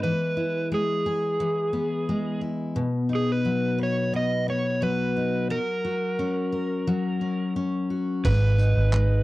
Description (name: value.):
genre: acoustic pop.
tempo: 88 BPM.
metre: 4/4.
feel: straight.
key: B major.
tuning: A4 = 440 Hz.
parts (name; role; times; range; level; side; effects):
overdriven slide guitar; melody; 0.0-9.2 s; G#4 to D#5; -27 LUFS; right 1 dB; slapback echo.
picked steel-string acoustic guitar; accompaniment; 0.0-9.2 s; G#2 to B4; -25 LUFS; left 1 dB; none.
dusty soul sampler-style drum kit; drums; 8.2-9.1 s; crash cymbal, handclaps, kick drum, tambourine; -30 LUFS; right 1 dB; none.
vintage muted fingered electric bass; bass; 8.3-9.2 s; G#1; -23 LUFS; right 1 dB; none.
room: light reverb.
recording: dry, close 1970s-style studio recording.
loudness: -23 LUFS.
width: side -18 dB against mid.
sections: 0.0-8.3 A section.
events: none.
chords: 0.0 E; 2.8 B; 5.5 F#; 8.3 G#m.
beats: | 0.03 0.72 1.40 2.09 | 2.77 3.46 4.14 4.83 | 5.51 6.20 6.88 7.57 | 8.25 8.94.